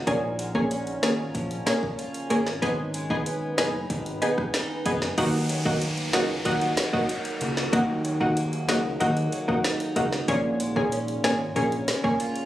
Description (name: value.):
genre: dancehall.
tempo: 94 BPM.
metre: 4/4.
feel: straight.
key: Eb minor.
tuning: A4 = 439 Hz.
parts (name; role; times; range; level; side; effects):
deep dark ambient pad; sustained chords; 0.0-12.5 s; Db4 to Ab5; -35 LUFS; equal; chorus, built-in reverb, sidechain pumping.
picked steel-string acoustic guitar; arpeggios; 0.0-12.5 s; Ab2 to F4; -32 LUFS; right 1 dB; none.
fat analog bass; bass; 0.0-11.8 s; Gb1 to Eb2; -31 LUFS; equal; none.
punchy chord stab; accompaniment; 0.1-12.5 s; Bb3 to Ab4; -25 LUFS; equal; chorus.
afro-pop drum kit; drums; 0.1-12.5 s; hi-hat, kick drum, rim click, snare drum; -30 LUFS; equal; none.
downlifter; sound effects; 5.2-10.3 s; none; -35 LUFS; left 1 dB; none.
room: light reverb.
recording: recorded on a phone in the room, studio reverb.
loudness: -23 LUFS.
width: side -13 dB against mid.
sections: 0.0-5.2 A section; 5.2-12.5 B section.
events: none.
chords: 0.1 Bbm7; 2.6 Abm; 5.2 Ebm; 10.3 Bbm7.